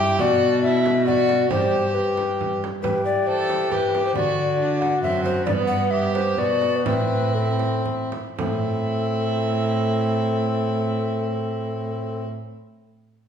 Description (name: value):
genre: classical, renaissance-style consort dance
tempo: 111-137 BPM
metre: 3/4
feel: straight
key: A dorian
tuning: A4 = 440 Hz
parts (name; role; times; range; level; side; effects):
- mellow hollow tenor recorder; melody; 0.0-12.2 s; A4 to G5; -24 LUFS; left 4 dB; none
- warm violin; second line; 0.0-12.2 s; B3 to A4; -29 LUFS; right 3 dB; none
- mellow bassoon; accompaniment; 0.0-12.2 s; B3 to G4; -25 LUFS; equal; none
- rich cello; bass; 0.0-12.2 s; F#2 to E3; -26 LUFS; right 2 dB; none
- frame drum; percussion; 0.2-8.6 s; none; -31 LUFS; right 3 dB; none
room: wet recital hall reverb, RT60 1.4 s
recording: heard from further back in the room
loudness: -20 LUFS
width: side -8 dB against mid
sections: 0.0-8.4 A section; 8.4-11.6 B section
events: slowing down 4.8-8.4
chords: 0.2 Bm; 1.5 G; 2.8 Em; 4.2 D; 5.5 G; 6.9 Am